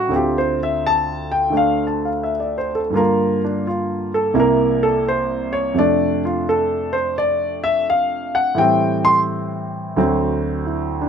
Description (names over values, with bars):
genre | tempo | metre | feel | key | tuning
solo jazz | 85 BPM | 4/4 | swing 67% on 8ths | D minor | A4 = 439 Hz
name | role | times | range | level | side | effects
warm concert grand piano | solo | 0.0-11.1 s | C2 to C6 | -17 LUFS | equal | none
room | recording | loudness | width
moderate spring reverb, RT60 1.1 s | none | -17 LUFS | side -7 dB against mid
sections
0.1-11.1 A section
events
grand piano solo 0.0-11.1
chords
0.1 Dm7; 2.9 Gm7; 4.3 C7; 5.7 F6; 8.6 Am7; 10.0 D7